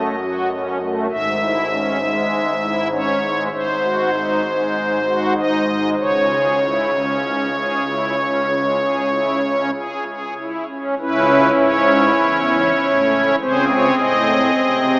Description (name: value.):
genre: classical, chorale-style piece for pipe organ.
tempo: 49 BPM.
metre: 4/4.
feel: rubato.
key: C# minor.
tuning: A4 = 438 Hz.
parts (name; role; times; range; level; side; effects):
pipe organ, strings celeste; solo; 0.0-15.0 s; F#1 to E5; -15 LUFS; equal; none.
room: wet huge ambient reverb, RT60 7.5 s.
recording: in a vast, echoing space, small speaker sound.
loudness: -15 LUFS.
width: side -27 dB against mid.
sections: 0.0-11.0 A section; 11.0-15.0 A section.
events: none.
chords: 0.0 D#m7b5/F# (rootless); 1.1 C#m/G#; 3.5 G#7; 6.0 C#m; 13.4 G#/C#.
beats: | 1.11 2.31 3.52 4.75 | 6.00 7.25 8.50 9.75 | 10.99 12.21 13.40 14.59.